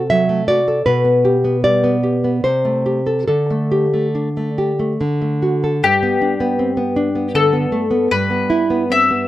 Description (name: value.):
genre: romantic duo for mandolin and classical guitar.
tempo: 68-81 BPM.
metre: 3/4.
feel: rubato.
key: G major.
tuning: A4 = 440 Hz.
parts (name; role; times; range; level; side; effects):
nylon-string guitar; accompaniment; 0.0-9.3 s; G2 to E5; -15 LUFS; equal; none.
mandolin; melody; 5.8-9.3 s; G4 to E5; -17 LUFS; left 4 dB; none.
room: light reverb.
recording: dry, close 1970s-style studio recording.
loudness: -14 LUFS.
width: side -14 dB against mid.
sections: 0.0-5.8 A section; 5.8-9.3 B section.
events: none.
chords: 0.0 D7/C; 0.8 G/B; 2.4 Am7/C; 3.3 Dsus4; 5.0 D; 5.8 G; 8.1 Em/G.